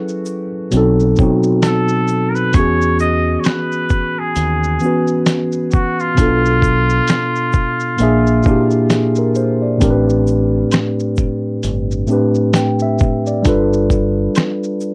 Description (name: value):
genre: lo-fi hip hop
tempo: 66 BPM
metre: 4/4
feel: swing 59% on 16ths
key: unclear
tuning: A4 = 440 Hz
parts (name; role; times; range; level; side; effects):
- trumpet with straight mute; melody; 0.0-8.7 s; F4 to Eb5; -22 LUFS; equal; low-pass filter, plate reverb
- mellow tine electric piano; accompaniment; 0.0-14.9 s; A2 to G5; -18 LUFS; equal; cassette tape, low-pass filter
- dusty soul sampler-style drum kit; drums; 0.1-14.9 s; hi-hat, kick drum, shaker, snare drum; -19 LUFS; equal; overdrive
- egg shaker and woodblock; percussion; 0.3-14.9 s; none; -36 LUFS; equal; none
- deep dub fingered electric bass; bass; 0.7-14.3 s; G1 to E2; -21 LUFS; equal; none
room: moderate studio ambience, RT60 0.5 s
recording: cassette tape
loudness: -15 LUFS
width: mono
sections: 0.0-14.9 A section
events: none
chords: 0.0 F#m11; 0.7 B7b9; 2.5 E69; 6.2 Bm7b5; 8.0 Bb7#11; 9.8 Am11; 13.5 G9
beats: 0.72 1.63 | 2.54 3.45 4.36 5.27 | 6.18 7.09 8.00 8.90 | 9.81 10.72 11.63 12.54 | 13.45 14.36